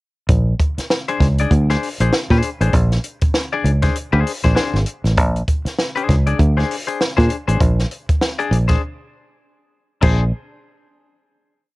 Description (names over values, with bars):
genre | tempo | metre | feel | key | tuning
funk | 99 BPM | 4/4 | swing 60% on 16ths | Bb mixolydian | A4 = 440 Hz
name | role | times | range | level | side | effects
fingered electric bass | bass | 0.3-10.3 s | Ab1 to Bb2 | -15 LUFS | equal | none
compact cocktail drum kit | drums | 0.3-10.2 s | crash cymbal, hi-hat, kick drum, snare drum | -18 LUFS | equal | cassette tape
semi-hollow electric guitar | accompaniment | 1.1-10.2 s | D4 to D5 | -22 LUFS | left 5 dB | plate reverb
room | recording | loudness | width
light reverb | home recording on cassette | -15 LUFS | side -20 dB against mid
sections
0.3-10.0 groove; 10.0-11.8 final chord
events
break 8.8-10.0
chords
0.3 Bb9